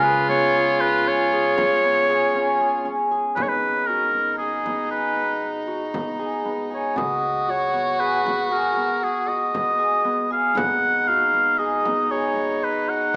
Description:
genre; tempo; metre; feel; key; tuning
contemporary instrumental, chamber music in an uneven meter; 117 BPM; 7/4; straight; Db mixolydian; A4 = 438 Hz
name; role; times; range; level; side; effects
warm oboe; melody; 0.0-13.2 s; Ab4 to Gb5; -23 LUFS; equal; none
clear soprano saxophone; second line; 0.0-13.2 s; Eb4 to Gb4; -29 LUFS; equal; none
concert harp; arpeggios; 0.0-13.2 s; Bb3 to Ab4; -28 LUFS; equal; none
upright bass; bass; 0.0-13.2 s; Ab1 to Db2; -43 LUFS; equal; none
frame drum; percussion; 0.0-13.2 s; none; -36 LUFS; equal; none
room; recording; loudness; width
wet recital hall reverb, RT60 1.8 s; small speaker sound; -22 LUFS; mono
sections
0.0-3.4 A section; 3.4-13.2 B section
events
none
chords
0.0 Db7; 3.4 Abm7; 7.0 Db7sus4; 10.6 Abm7

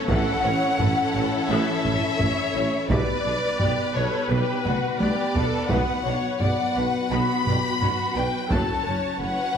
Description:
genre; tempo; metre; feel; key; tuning
cinematic, epic orchestral film score; 86 BPM; 4/4; straight; B minor; A4 = 441 Hz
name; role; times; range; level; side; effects
warm symphonic violin section; melody; 0.0-9.6 s; B4 to B5; -28 LUFS; left 4 dB; none
mellow hollow silver concert flute; second line; 0.0-9.6 s; B4 to B5; -31 LUFS; equal; none
warm symphonic violin section; second line; 0.0-9.6 s; F#4 to D5; -30 LUFS; left 2 dB; none
rich symphonic viola section; accompaniment; 0.0-9.6 s; C#3 to B4; -32 LUFS; right 1 dB; none
mellow French horn section; sustained chords; 0.0-9.6 s; E3 to C#4; -32 LUFS; left 4 dB; none
warm symphonic string section; sustained chords; 0.0-9.6 s; G3 to C#5; -32 LUFS; equal; none
mellow tuba; bass; 0.1-9.4 s; F#1 to B1; -32 LUFS; right 4 dB; none
rich symphonic cello section; bass; 0.1-9.3 s; F#2 to B2; -32 LUFS; right 3 dB; none
warm studio double bass section; bass; 0.1-9.3 s; F#1 to B1; -33 LUFS; right 4 dB; none
taiko ensemble; drums; 0.1-9.2 s; none; -27 LUFS; equal; none
room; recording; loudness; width
wet scoring stage reverb, RT60 1.4 s; none; -21 LUFS; side -7 dB against mid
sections
0.0-9.6 A section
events
drum fill 4.6-5.7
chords
0.1 A; 2.9 G/B; 5.7 B5; 8.5 F#m

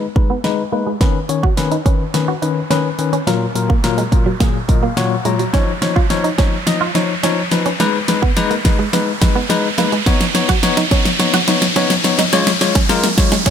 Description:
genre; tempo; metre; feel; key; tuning
dance-pop; 106 BPM; 4/4; straight; unclear; A4 = 440 Hz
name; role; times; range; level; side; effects
bell-like tine electric piano; accompaniment; 0.0-13.5 s; A#2 to A#5; -18 LUFS; left 6 dB; fast stereo tremolo, sidechain pumping, low-pass filter
riser; sound effects; 0.0-13.5 s; none; -22 LUFS; right 1 dB; none
direct-recorded clean electric guitar; riff; 0.2-13.5 s; F#3 to F#4; -23 LUFS; right 8 dB; ensemble chorus, low-pass filter
pop drum kit; drums; 0.2-13.5 s; hi-hat, kick drum, snare drum; -16 LUFS; right 1 dB; none
room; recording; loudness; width
light reverb, digital ambience; none; -13 LUFS; side -8 dB against mid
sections
0.0-13.5 A section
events
build-up 0.0-13.5; drum fill 0.0-13.5; riser 0.0-13.5; filter sweep 0.0-13.5; tine electric piano fill 4.4-5.5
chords
0.0 G#m; 1.0 Badd9; 3.3 F#maj7/A#; 5.5 C#add9; 7.8 G#m; 10.1 Badd9; 12.3 C#

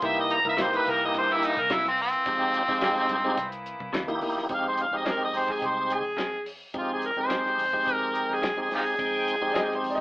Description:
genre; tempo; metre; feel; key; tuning
straight-eighth soul blues; 107 BPM; 4/4; straight; unclear; A4 = 441 Hz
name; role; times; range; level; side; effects
overdriven harmonica; melody; 0.0-9.8 s; C4 to Bb5; -25 LUFS; equal; none
tonewheel organ; accompaniment; 0.0-10.0 s; Ab3 to G5; -29 LUFS; equal; slow rotary speaker, chorus vibrato
clear horn section; sustained chords; 0.0-4.5 s; E3 to F4; -36 LUFS; equal; none
vintage muted fingered electric bass; bass; 0.0-10.0 s; C2 to G2; -44 LUFS; equal; none
cloth-damped thuddy drum kit; drums; 0.0-10.0 s; hi-hat, kick drum, snare drum; -36 LUFS; equal; none
direct-recorded clean electric guitar; stabs; 0.6-9.7 s; F2 to D#4; -33 LUFS; left 1 dB; tremolo
warm upright piano; second line; 9.5-10.0 s; C5 to Eb5; -29 LUFS; left 1 dB; none
room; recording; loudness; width
moderate small room reverb, RT60 0.5 s; band playing live in one room, AM radio sound; -24 LUFS; side -21 dB against mid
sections
0.0-4.5 A section; 4.5-10.0 B section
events
harmonica solo 0.0-4.5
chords
0.0 C7#9; 2.3 Fm7; 3.4 C7#9; 4.5 Fm7

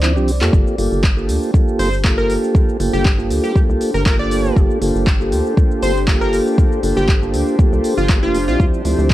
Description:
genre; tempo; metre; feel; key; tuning
deep house; 119 BPM; 4/4; swing 53% on 16ths; G minor; A4 = 436 Hz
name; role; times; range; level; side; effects
deep dark ambient pad; sustained chords; 0.0-9.1 s; A4 to D6; -31 LUFS; left 3 dB; none
mellow tonewheel organ; stabs; 0.0-9.1 s; F3 to C5; -20 LUFS; right 1 dB; slow rotary speaker, vintage 12-bit sampler grit, sidechain pumping, tape echo
rubbery square bass; bass; 0.0-9.1 s; F1 to F2; -20 LUFS; equal; sidechain pumping
deep house drum kit; drums; 0.0-9.1 s; handclaps, hi-hat, shaker; -25 LUFS; equal; vintage 12-bit sampler grit, small room ambience
airy breathy pad; texture; 0.0-9.1 s; D4 to D5; -25 LUFS; left 2 dB; chorus, sidechain pumping
electronic kick drum; drums; 0.5-9.1 s; none; -14 LUFS; equal; vintage 12-bit sampler grit, small room ambience
plucky unison lead; melody; 1.8-8.7 s; F4 to D5; -23 LUFS; equal; cassette tape, analog delay
room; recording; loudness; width
little or no reverb; none; -13 LUFS; side -15 dB against mid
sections
0.0-9.1 A section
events
break 0.0-0.5; drum fill 0.0-0.5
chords
0.0 Dm9; 0.5 Gm9; 8.6 Dm9

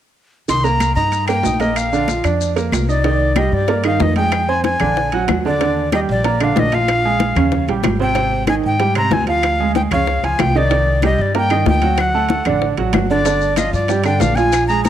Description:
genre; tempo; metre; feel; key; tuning
latin, salsa; 188 BPM; 4/4; straight; C minor; A4 = 438 Hz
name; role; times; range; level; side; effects
breathy bright jazz flute; melody; 0.5-14.9 s; D5 to C6; -19 LUFS; left 2 dB; none
bright upright piano; accompaniment; 0.5-14.9 s; C3 to C6; -19 LUFS; right 6 dB; cassette tape
upright bass; bass; 0.5-14.9 s; G1 to Ab2; -20 LUFS; left 2 dB; none
congas; percussion; 0.5-14.9 s; none; -25 LUFS; left 2 dB; none
maracas; percussion; 0.5-3.1, 13.3-14.9 s; none; -32 LUFS; left 13 dB; none
timbales; percussion; 0.5-14.9 s; none; -26 LUFS; right 8 dB; none
claves; percussion; 0.8-14.7 s; none; -29 LUFS; left 12 dB; none
bongos; percussion; 3.0-14.9 s; none; -24 LUFS; left 10 dB; none
room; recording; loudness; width
light reverb, small room ambience; home recording on cassette; -14 LUFS; side -10 dB against mid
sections
0.5-3.0 A section; 3.0-14.9 B section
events
none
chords
0.5 Cm7; 1.8 Bb; 3.0 Cm9; 4.3 Fmadd9; 5.0 Bbaug7; 5.6 Ebmaj9; 6.9 Bbm7; 7.5 Eb7; 8.2 Abmaj7; 9.4 Ddim; 10.1 Db; 10.7 Cm9; 12.0 D; 13.3 Gm7

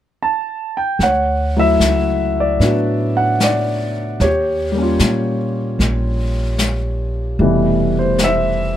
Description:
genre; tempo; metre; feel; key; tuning
jazz ballad; 75 BPM; 4/4; swing 69% on 8ths; D major; A4 = 439 Hz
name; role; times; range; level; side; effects
warm grand piano; accompaniment; 0.2-8.8 s; B2 to A5; -17 LUFS; equal; none
upright bass; bass; 1.0-8.8 s; F1 to Bb2; -20 LUFS; right 1 dB; none
vintage brush drum kit; drums; 1.0-8.8 s; brushed snare drum, hi-hat, snare drum; -22 LUFS; left 2 dB; none
room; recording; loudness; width
light reverb; none; -15 LUFS; side -11 dB against mid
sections
1.0-8.8 A section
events
none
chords
0.0 N.C.; 1.0 Dmaj9; 4.2 Eb9; 7.4 Fmaj9#11

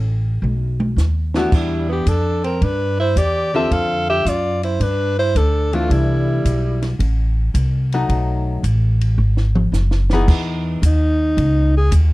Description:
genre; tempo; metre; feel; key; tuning
jazz, small-group swing and bop; 110 BPM; 4/4; swing 68% on 8ths; unclear; A4 = 440 Hz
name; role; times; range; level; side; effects
upright bass; bass; 0.0-12.1 s; F#1 to G2; -17 LUFS; equal; none
compact cocktail drum kit; drums; 0.4-12.1 s; crash cymbal, hi-hat, kick drum, ride cymbal, snare drum, toms; -21 LUFS; equal; none
clear alto saxophone; melody; 1.4-7.0, 10.9-11.9 s; D#4 to F5; -20 LUFS; left 1 dB; none
breathy tenor saxophone; second line; 1.4-7.0 s; G3 to A4; -25 LUFS; right 3 dB; none
archtop guitar, miked and amplified; accompaniment; 1.4-10.8 s; D3 to A4; -22 LUFS; left 2 dB; none
room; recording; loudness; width
light reverb; dark, warm production; -15 LUFS; side -19 dB against mid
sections
0.0-10.3 A section; 10.3-12.1 B section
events
drum fill 0.4-1.5, 9.2-10.3; alto saxophone solo 10.3-12.1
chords
0.4 B; 1.5 Em7; 3.7 Dm7; 4.8 G5; 5.9 C69; 8.1 B7; 10.3 Emaj7

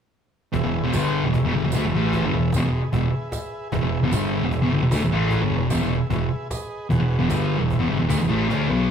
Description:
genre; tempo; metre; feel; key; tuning
garage rock duo or trio; 151 BPM; 4/4; straight; E major; A4 = 442 Hz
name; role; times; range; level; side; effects
overdriven combo organ; sustained chords; 0.5-8.9 s; G#4 to F#5; -33 LUFS; right 1 dB; none
thick fuzz guitar; riff; 0.5-8.9 s; E2 to D4; -20 LUFS; equal; distortion
growling picked electric bass; bass; 0.5-8.9 s; E1 to D2; -28 LUFS; equal; overdrive, tube saturation
cajon; drums; 0.5-8.6 s; none; -31 LUFS; equal; none
tambourine; percussion; 0.9-8.2 s; none; -39 LUFS; right 7 dB; none
room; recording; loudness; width
moderate large studio reverb, RT60 1.1 s; band playing live in one room; -20 LUFS; side -8 dB against mid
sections
0.5-8.9 A section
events
none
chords
0.5 E

